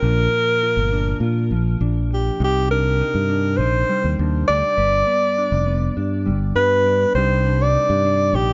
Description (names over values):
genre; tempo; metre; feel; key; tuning
highlife guitar band; 101 BPM; 4/4; straight; C minor; A4 = 439 Hz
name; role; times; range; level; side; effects
breathy alto saxophone; melody; 0.0-8.5 s; G4 to D5; -21 LUFS; equal; tape echo
mellow electric guitar; accompaniment; 0.0-8.5 s; G2 to B4; -28 LUFS; equal; none
fingered electric bass; bass; 0.0-8.5 s; F1 to Bb2; -22 LUFS; equal; none
room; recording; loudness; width
light reverb; nothing above 7.5 kHz; -19 LUFS; mono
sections
0.0-8.5 A section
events
none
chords
0.0 Bb; 2.4 Cmadd9; 4.8 G; 7.2 Cmadd9